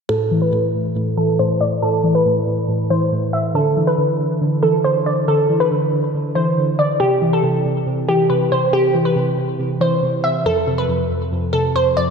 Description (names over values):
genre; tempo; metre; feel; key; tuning
hip hop; 139 BPM; 4/4; half-time; A minor; A4 = 439 Hz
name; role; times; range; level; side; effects
glassy wavetable pluck; melody; 0.1-12.1 s; G4 to E5; -18 LUFS; equal; chorus, low-pass filter, ping-pong delay
warbly lo-fi synth keys; accompaniment; 0.1-12.1 s; F2 to E3; -19 LUFS; equal; chorus, low-pass filter
room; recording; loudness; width
wet plate reverb, RT60 3.2 s; dreamy mix soaked in reverb; -15 LUFS; side -6 dB against mid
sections
0.1-12.1 A section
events
filter sweep 0.1-12.1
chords
0.1 A5; 3.5 Dsus2; 7.0 C; 10.5 F5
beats
| 0.10 0.53 0.96 1.39 | 1.82 2.25 2.69 3.12 | 3.55 3.98 4.41 4.84 | 5.28 5.71 6.14 6.57 | 7.00 7.43 7.87 8.30 | 8.73 9.16 9.59 10.03 | 10.46 10.89 11.32 11.75